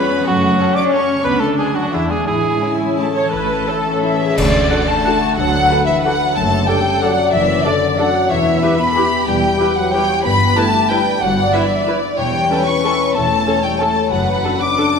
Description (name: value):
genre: classical, orchestral ballroom waltz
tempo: 160-201 BPM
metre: 3/4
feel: rubato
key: A major, D major from 4.4 s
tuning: A4 = 440 Hz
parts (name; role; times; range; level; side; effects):
- warm symphonic violin section; melody; 0.0-15.0 s; D5 to D6; -20 LUFS; left 1 dB; none
- warm cor anglais; second line; 0.0-14.9 s; E4 to F#5; -24 LUFS; right 3 dB; none
- warm symphonic violin section; second line; 0.0-15.0 s; C#4 to D5; -23 LUFS; left 3 dB; none
- warm symphonic viola section; accompaniment; 0.0-14.9 s; G#3 to C#5; -23 LUFS; equal; none
- concert harp; arpeggios; 0.0-15.0 s; E2 to A5; -22 LUFS; left 7 dB; none
- warm studio cello section; bass; 0.0-14.4 s; D2 to D4; -25 LUFS; right 3 dB; none
- warm symphonic double bass section; bass; 0.3-14.4 s; E1 to F#2; -25 LUFS; right 3 dB; none
- cymbal swell, clash cymbals and concert bass drum; percussion; 2.3-5.0 s; none; -25 LUFS; equal; none
- concert flute; second line; 4.0-15.0 s; D5 to D6; -21 LUFS; left 1 dB; none
- mellow French horn section; sustained chords; 4.0-15.0 s; D3 to D4; -21 LUFS; left 2 dB; none
- mellow clarinet; second line; 4.7-14.9 s; C#4 to A4; -27 LUFS; equal; none
room: wet concert hall reverb, RT60 2.0 s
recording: minimal, uncompressed stereo recording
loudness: -13 LUFS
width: side -6 dB against mid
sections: 0.0-4.4 A section; 4.4-15.0 B section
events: band accent 4.4-4.7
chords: 0.3 F#m; 1.3 Bm7/D; 1.9 E7; 2.3 A; 4.4 D; 6.4 D/F#; 8.3 Em; 10.2 Em/G; 12.2 A7/E; 14.1 D/F#